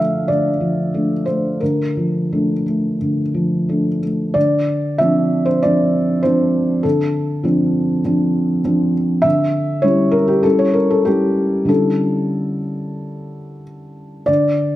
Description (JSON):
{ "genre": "neoclassical minimalist piano", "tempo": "86-101 BPM", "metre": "4/4", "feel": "rubato", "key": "D minor", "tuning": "A4 = 440 Hz", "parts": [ { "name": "felt-muted upright piano", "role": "solo", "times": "0.0-14.8 s", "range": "D3 to F5", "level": "-15 LUFS", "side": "equal", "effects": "none" } ], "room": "moderate recital hall reverb, RT60 1.3 s", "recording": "none", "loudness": "-15 LUFS", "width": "side -15 dB against mid", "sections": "0.0-4.3 A section; 4.3-14.8 B section", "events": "none", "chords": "0.0 Bbmaj7/D; 4.3 Dm7; 9.2 A7/D" }